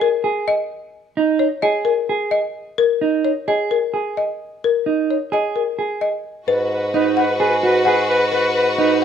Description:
classical, minimalist pattern music; 130 BPM; 4/4; straight; G# minor; A4 = 440 Hz
folk marimba with medium hard mallets; melody; 0.0-9.0 s; A#4 to F#5; -20 LUFS; left 5 dB
mellow electric guitar; arpeggios; 0.0-9.0 s; D#4 to G#4; -20 LUFS; right 6 dB
clear clarinet; second line; 6.5-9.0 s; B4; -21 LUFS; right 1 dB
rich studio violin section; sustained chords; 6.5-9.0 s; F#4 to B4; -22 LUFS; left 3 dB
warm bassoon; bass; 6.5-9.0 s; G#2; -22 LUFS; equal
light reverb; close, detailed microphones; -16 LUFS; side -8 dB against mid
0.0-6.5 A section; 6.5-9.0 B section
0.0 G#sus2; 6.5 G#m7
0.01 0.47 | 0.94 1.40 1.86 2.32 | 2.78 3.24 3.71 4.17 | 4.63 5.09 5.55 6.01 | 6.47 6.94 7.40 7.86 | 8.32 8.78

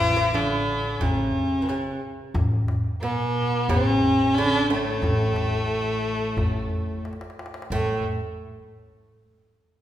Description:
Arabic maqam ensemble; 89 BPM; 4/4; straight; A maqam huzam; A4 = 440 Hz
rich violin; melody; 0.0-8.0 s; A3 to E4+40c; -24 LUFS; equal
oud; second line; 0.0-8.0 s; A2 to E3+40c; -28 LUFS; right 2 dB
upright bass; bass; 0.0-8.0 s; A1; -29 LUFS; equal
darbuka; percussion; 0.0-8.0 s; -29 LUFS; left 1 dB
wet recital hall reverb, RT60 1.7 s; recorded in a church or concert hall; -21 LUFS; side -12 dB against mid
0.0-7.7 A section; 7.7-9.8 B section
drum fill 7.0-7.7
0.33 1.00 1.68 | 2.35 3.02 3.69 4.36 | 5.03 5.71 6.38 7.05 | 7.72

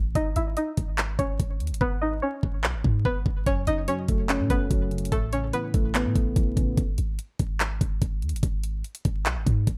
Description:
hip hop, trap; 145 BPM; 4/4; half-time; G# phrygian; A4 = 440 Hz
string-like resonator pluck; melody; 0.0-6.7 s; A3 to E5; -31 LUFS; equal; chorus, low-pass filter
clean 808-style bass; bass; 0.0-9.8 s; F#1 to A2; -30 LUFS; equal
trap drum kit; drums; 0.2-9.8 s; handclaps, hi-hat, kick drum; -29 LUFS; equal
soft electric-piano-like synth keys; accompaniment; 3.5-6.8 s; F#2 to C#4; -31 LUFS; equal; chorus, low-pass filter
little or no reverb; vinyl crackle; -26 LUFS; mono
0.0-9.8 A section
filter sweep 0.0-3.5; hi-hats muted 1.8-3.5
0.2 G#m; 3.5 F#m; 5.1 Aadd9; 6.8 N.C.
| 0.15 0.57 0.98 1.40 | 1.81 2.22 2.64 3.05 | 3.46 3.88 4.29 4.71 | 5.12 5.53 5.95 6.36 | 6.78 7.19 7.60 8.02 | 8.43 8.84 9.26 9.67

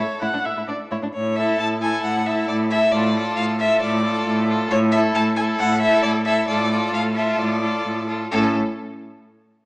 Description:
quick classical-period movement for string quartet; 133 BPM; 4/4; rubato; A major; A4 = 440 Hz
rich violin; melody; 0.0-8.6 s; A4 to A5; -22 LUFS; left 1 dB
rich violin; second line; 0.0-8.6 s; D4 to A4; -26 LUFS; equal
clear viola; accompaniment; 0.0-8.6 s; C#4 to F#5; -27 LUFS; equal
clear cello; bass; 0.0-8.6 s; A2; -22 LUFS; equal
wet recital hall reverb, RT60 1.5 s; small speaker sound; -18 LUFS; side -25 dB against mid
0.0-1.1 A section; 1.1-8.3 B section; 8.3-9.7 C section
0.0 A; 1.1 A5; 2.9 Dm/A; 4.7 A5; 6.5 Dm/A; 8.3 A
0.21 0.68 | 1.13 1.58 2.03 2.48 | 2.92 3.37 3.82 4.26 | 4.70 5.15 5.59 6.03 | 6.48 6.93 7.38 7.84 | 8.32

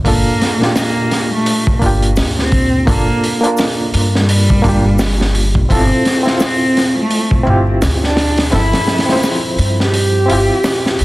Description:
trip hop; 85 BPM; 4/4; swing 60% on 16ths; G dorian; A4 = 440 Hz
barky reed electric piano; accompaniment; 0.0-11.0 s; Bb2 to C5; -18 LUFS; equal; overdrive, fast tremolo, vintage 12-bit sampler grit, tape echo
upright bass; bass; 0.0-11.0 s; G1 to G2; -16 LUFS; equal
crunchy breakbeat drum kit; drums; 0.0-11.0 s; hi-hat, kick drum, snare drum; -16 LUFS; equal
dark cello; melody; 0.1-11.0 s; G3 to G4; -17 LUFS; equal; tape echo
egg shaker; percussion; 0.8-10.8 s; -33 LUFS; left 5 dB
small room ambience; dense, heavily limited modern master, vinyl crackle; -11 LUFS; side -19 dB against mid
0.0-11.0 A section
kick drops out 9.9-11.0
0.1 Gm7; 5.7 Dm7/G
| 0.05 0.76 1.46 2.17 | 2.88 3.58 4.29 4.99 | 5.70 6.41 7.11 7.82 | 8.52 9.23 9.94 10.64

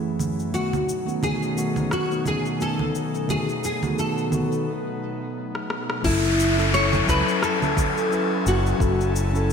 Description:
sunset chillout; 87 BPM; 4/4; swing 56% on 16ths; F# dorian; A4 = 440 Hz
mellow tine electric piano; accompaniment; 0.0-9.5 s; D#3 to G#5; -27 LUFS; moving between left 5 dB and right 4 dB; auto-pan, ping-pong delay
airy breathy pad; sustained chords; 0.0-9.5 s; F#2 to G#5; -30 LUFS; left 1 dB; chorus
smooth R&B drum kit; drums; 0.2-9.5 s; cabasa, congas, crash cymbal, rim click; -30 LUFS; right 2 dB; overdrive, studio ambience, gated reverb
nylon-string guitar; melody; 0.5-9.1 s; E4 to C#5; -25 LUFS; left 1 dB; ensemble chorus, ping-pong delay
mellow fretless electric bass; bass; 6.0-9.5 s; F#1 to C#2; -23 LUFS; left 1 dB
electronic kick drum; drums; 6.0-9.0 s; -25 LUFS; left 1 dB; overdrive, studio ambience
downlifter; sound effects; 6.0-9.5 s; -26 LUFS; left 3 dB
moderate lush hall reverb, RT60 2.2 s; bright 1980s-style digital production; -21 LUFS; side -6 dB against mid
0.0-6.0 A section; 6.0-9.5 B section
break 4.7-6.0; drum fill 5.5-6.0
0.0 F#m7; 0.5 B7; 6.0 F#m7
| 0.53 1.22 1.91 2.60 | 3.29 3.98 4.67 5.36 | 6.05 6.74 7.43 8.12 | 8.81 9.50

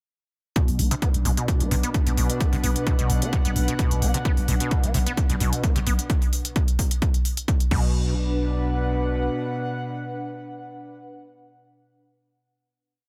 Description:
driving peak-time techno; 130 BPM; 4/4; straight; B minor; A4 = 439 Hz
overdriven acid bass; riff; 0.6-8.1 s; B2 to B3; -32 LUFS; equal; analog chorus, sidechain pumping, delay
analog drone; drone; 1.4-10.8 s; B2; -35 LUFS; equal; chorus, sidechain pumping
electronic kick drum; drums; 0.6-7.8 s; -25 LUFS; equal
techno drum kit; drums; 0.6-7.8 s; crash cymbal, hi-hat; -34 LUFS; equal; sidechain pumping on hats, sidechain pumping on cymbals
airy breathy pad; texture; 0.8-11.1 s; D4 to F#5; -34 LUFS; equal; chorus, sidechain pumping
growling 808-style bass; bass; 0.7-9.3 s; B1; -27 LUFS; equal; tube saturation, sidechain pumping, low-pass filter
light reverb; dense, heavily limited modern master; -23 LUFS; mono
0.6-7.9 groove; 7.9-11.6 final note
0.6 Bm
| 0.56 1.02 1.48 1.94 | 2.41 2.87 3.33 3.79 | 4.25 4.71 5.17 5.64 | 6.10 6.56 7.02 7.48 | 7.94 8.41 8.87 9.33 | 9.79 10.25 10.71

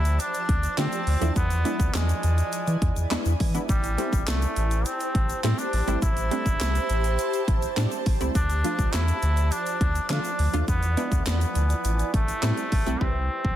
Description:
dance-pop; 103 BPM; 4/4; straight; A minor; A4 = 440 Hz
trombone with straight mute; melody; 0.0-13.6 s; G3 to E4; -30 LUFS; equal; ping-pong delay
shimmering ambient pad; sustained chords; 0.0-13.6 s; F3 to B5; -33 LUFS; right 2 dB; chorus, built-in reverb, sidechain pumping
warm sub bass; bass; 0.0-13.5 s; G1 to E3; -24 LUFS; equal; sidechain pumping
house drum kit; drums; 0.1-13.6 s; handclaps, hi-hat, kick drum, snare drum; -27 LUFS; equal
tube shaker; percussion; 0.1-13.0 s; -42 LUFS; left 12 dB
punchy chord stab; accompaniment; 0.8-13.6 s; F3 to B4; -31 LUFS; right 1 dB; chorus, sidechain pumping
little or no reverb; dense, heavily limited modern master; -22 LUFS; side -12 dB against mid
0.0-13.0 A section
0.0 Dm; 1.4 E7; 3.7 Am7; 8.4 Dm; 10.7 E7; 11.8 Am7; 13.0 Cmaj7
0.20 0.78 | 1.36 1.94 2.53 3.11 | 3.69 4.27 4.86 5.44 | 6.02 6.60 7.19 7.77 | 8.35 8.94 9.52 10.10 | 10.68 11.27 11.85 12.43 | 13.01

